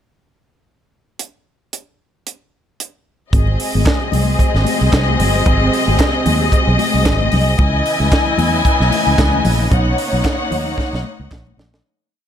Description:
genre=disco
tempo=113 BPM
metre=4/4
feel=swing 56% on 16ths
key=unclear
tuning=A4 = 439 Hz
part: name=tight funk drum kit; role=drums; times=1.2-11.8 s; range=hi-hat, kick drum, snare drum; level=-18 LUFS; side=right 1 dB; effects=none
part: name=rich studio string section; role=second line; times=3.3-11.8 s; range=B#3 to G#5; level=-19 LUFS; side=left 1 dB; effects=none
part: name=clear studio string section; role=sustained chords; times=3.3-11.8 s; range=B#2 to D#5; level=-22 LUFS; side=left 1 dB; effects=none
part: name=fingered electric bass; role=bass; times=3.3-11.8 s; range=G1 to E2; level=-16 LUFS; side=equal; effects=none
part: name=congas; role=percussion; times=3.3-11.7 s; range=none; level=-25 LUFS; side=left 8 dB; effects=none
part: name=group handclap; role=percussion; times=3.9-11.5 s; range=none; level=-30 LUFS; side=right 3 dB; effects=none
room=light reverb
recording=none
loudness=-13 LUFS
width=side -9 dB against mid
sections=1.2-3.3 pickup bar; 3.3-11.8 verse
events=fade-out 9.7-11.8; drum fill 10.8-11.8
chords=1.2 N.C.; 3.3 G#7; 7.6 C#m9; 9.7 Bmaj9

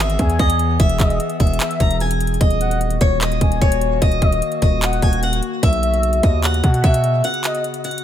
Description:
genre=hip hop, trap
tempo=149 BPM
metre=4/4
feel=half-time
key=unclear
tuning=A4 = 440 Hz
part: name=picked swing-style acoustic guitar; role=melody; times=0.0-8.0 s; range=C#5 to A#5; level=-22 LUFS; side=left 1 dB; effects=digital delay
part: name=warbly tape-like pad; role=sustained chords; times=0.0-8.0 s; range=C#3 to G#4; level=-26 LUFS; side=left 4 dB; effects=chorus, built-in reverb
part: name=distorted 808-style bass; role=bass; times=0.0-7.2 s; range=D#1 to B2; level=-20 LUFS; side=equal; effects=distortion
part: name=trap drum kit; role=drums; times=0.1-8.0 s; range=handclaps, hi-hat, kick drum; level=-18 LUFS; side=equal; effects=none
part: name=gliding portamento lead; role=second line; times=0.2-7.6 s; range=D#5 to G#5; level=-27 LUFS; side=left 3 dB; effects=chorus, digital delay
room=digital ambience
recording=none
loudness=-15 LUFS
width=side -10 dB against mid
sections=0.0-8.0 A section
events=break 7.2-8.0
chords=0.0 E; 2.4 D#m; 5.6 Bsus2

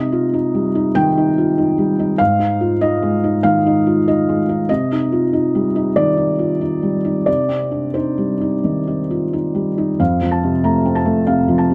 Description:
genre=neoclassical minimalist piano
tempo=86-98 BPM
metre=4/4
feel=rubato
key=C minor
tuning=A4 = 440 Hz
part: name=felt-muted upright piano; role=solo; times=0.0-11.7 s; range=F2 to Bb5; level=-17 LUFS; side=equal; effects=none
room=light reverb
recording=close, detailed microphones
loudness=-17 LUFS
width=mono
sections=0.0-10.0 A section; 10.0-11.7 B section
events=none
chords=0.0 Cm; 2.2 Ab5; 4.7 Cm; 10.0 F

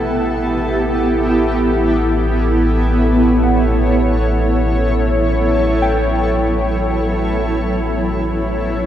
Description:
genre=ambient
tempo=free time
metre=none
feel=none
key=A mixolydian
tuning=A4 = 440 Hz
part: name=granular cloud pad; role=sustained chords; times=0.0-8.9 s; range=F#3 to C#5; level=-16 LUFS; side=equal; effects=built-in reverb
part: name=muted felt-like synth keys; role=arpeggios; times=0.0-8.9 s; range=F#5 to A5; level=-28 LUFS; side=left 2 dB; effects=chorus, tape echo
part: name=warm sub bass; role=bass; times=0.0-8.9 s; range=A1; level=-19 LUFS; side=equal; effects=none
room=wet lush hall reverb, RT60 2.6 s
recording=dark, warm production, faint mains hum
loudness=-14 LUFS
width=side -10 dB against mid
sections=0.0-8.9 A section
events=none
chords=0.0 A9

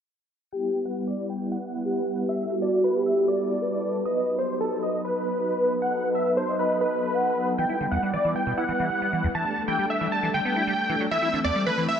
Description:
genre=trance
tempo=136 BPM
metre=4/4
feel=straight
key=E minor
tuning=A4 = 440 Hz
part: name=big supersaw lead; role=melody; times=0.5-12.0 s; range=A4 to A5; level=-28 LUFS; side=equal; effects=low-pass filter, digital delay
part: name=warm velvety synth lead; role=second line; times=0.5-7.6 s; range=F#4 to F#5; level=-27 LUFS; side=equal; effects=chorus, cassette tape, dub echo
part: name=wide unison pluck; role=second line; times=0.5-12.0 s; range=A4 to A5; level=-33 LUFS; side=equal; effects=phaser
part: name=analog string pad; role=sustained chords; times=0.5-11.9 s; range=E3 to B4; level=-29 LUFS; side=equal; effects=ensemble chorus
part: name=liquid acid bass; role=arpeggios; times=7.6-11.9 s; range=E2 to E4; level=-29 LUFS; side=right 1 dB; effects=phaser, analog chorus, digital delay
room=moderate huge ambient reverb, RT60 6.2 s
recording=low-pass filter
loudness=-23 LUFS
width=side -8 dB against mid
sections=0.5-12.0 A section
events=filter sweep on supersaw synth 0.5-12.0; filter sweep on analog synth pad 0.5-12.0; filter sweep on synth pluck 0.5-12.0; filter sweep 0.5-12.0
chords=0.5 Em; 4.1 B; 7.6 Em; 9.3 Gsus2; 11.1 Am

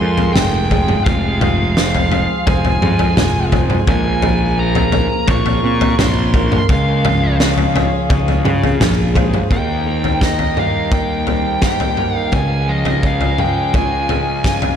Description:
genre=post-rock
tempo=85 BPM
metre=4/4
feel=straight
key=unclear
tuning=A4 = 440 Hz
part: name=nasal lead guitar with a parked wah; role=melody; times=0.0-14.8 s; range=Eb5 to Db6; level=-22 LUFS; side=equal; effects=overdrive, diffuse ambient delay
part: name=pedal harmonium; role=sustained chords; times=0.0-14.8 s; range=Db3 to G5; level=-25 LUFS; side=left 2 dB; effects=stereo widening
part: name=felt-muted upright piano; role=arpeggios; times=0.0-14.8 s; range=C4 to Db5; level=-27 LUFS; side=right 5 dB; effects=diffuse ambient delay
part: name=twelve-string electric guitar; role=arpeggios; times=0.0-14.8 s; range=Bb2 to Bb4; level=-23 LUFS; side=equal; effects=diffuse ambient delay
part: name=fuzz picked electric bass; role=bass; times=0.0-14.8 s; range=F1 to Db3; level=-19 LUFS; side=equal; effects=overdrive
part: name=loose indie drum kit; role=drums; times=0.2-14.8 s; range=kick drum, snare drum, toms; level=-17 LUFS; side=equal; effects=none
room=moderate lush hall reverb, RT60 3.0 s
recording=dreamy mix soaked in reverb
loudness=-13 LUFS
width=side -8 dB against mid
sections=0.0-9.5 A section; 9.5-14.8 B section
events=none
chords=0.0 Fm; 3.9 Bbmadd9; 6.7 Db; 9.5 Eb; 12.3 Db

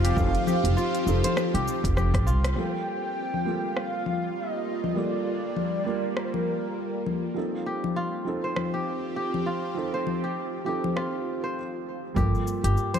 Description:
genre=organic downtempo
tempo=100 BPM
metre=4/4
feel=swing 58% on 16ths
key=G minor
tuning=A4 = 441 Hz
part: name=breathy flute-like synth lead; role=melody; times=0.0-7.1 s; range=Bb4 to G5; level=-32 LUFS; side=right 1 dB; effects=ensemble chorus, digital delay
part: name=felt-muted upright piano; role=accompaniment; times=0.0-13.0 s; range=F3 to Bb4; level=-33 LUFS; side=right 4 dB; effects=sidechain pumping, digital delay
part: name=bowed-like drone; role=sustained chords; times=0.0-13.0 s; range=F3 to D5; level=-32 LUFS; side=equal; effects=built-in reverb, phaser, sidechain pumping
part: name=kora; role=arpeggios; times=0.0-3.8, 7.7-13.0 s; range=F4 to C5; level=-32 LUFS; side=left 1 dB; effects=digital delay
part: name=upright bass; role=bass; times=0.0-2.5, 12.2-12.7 s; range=F1 to C2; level=-24 LUFS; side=equal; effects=sidechain pumping
part: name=deep house drum kit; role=drums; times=0.0-13.0 s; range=cabasa, congas, hi-hat, rim click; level=-31 LUFS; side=left 5 dB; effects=overdrive, low-pass filter on perc, low-pass filter on hats, low-pass filter on snare
part: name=electronic kick drum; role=drums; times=0.2-2.2, 12.2-12.3 s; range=none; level=-28 LUFS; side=equal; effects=overdrive
room=moderate lush hall reverb, RT60 2.4 s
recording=dark, warm production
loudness=-25 LUFS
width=side -8 dB against mid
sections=0.0-2.6 A section; 2.6-12.2 B section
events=drum fill 2.0-2.6; band accent 2.4; stop 11.6-12.2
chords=0.0 F7; 2.6 Gm9; 7.4 F7; 12.2 Gm9

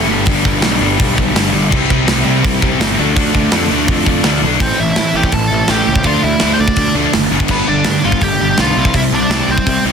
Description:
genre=punk rock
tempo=166 BPM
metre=4/4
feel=straight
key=A minor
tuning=A4 = 439 Hz
part: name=distorted electric guitar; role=riff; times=0.0-9.9 s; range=G2 to D4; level=-20 LUFS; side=right 13 dB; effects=distortion
part: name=overdriven electric guitar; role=riff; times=0.0-9.9 s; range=G2 to G4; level=-20 LUFS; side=equal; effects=none
part: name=overdriven semi-hollow guitar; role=riff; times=0.0-9.9 s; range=G2 to D4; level=-19 LUFS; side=left 13 dB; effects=none
part: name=fuzz picked electric bass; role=bass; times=0.0-9.9 s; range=F#1 to A2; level=-19 LUFS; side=equal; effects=overdrive
part: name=tight metal drum kit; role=drums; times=0.3-9.8 s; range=crash cymbal, hi-hat, kick drum, snare drum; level=-16 LUFS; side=equal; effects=none
part: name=nasal lead guitar with a parked wah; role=melody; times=4.6-9.8 s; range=B3 to A5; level=-17 LUFS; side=equal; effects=overdrive, digital delay
room=light reverb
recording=dense, heavily limited modern master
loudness=-11 LUFS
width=side -6 dB against mid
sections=0.0-4.6 A section; 4.6-9.9 B section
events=none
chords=0.1 G; 1.7 C; 3.0 Dm; 4.6 Am; 6.0 Dm; 7.3 G; 8.8 C

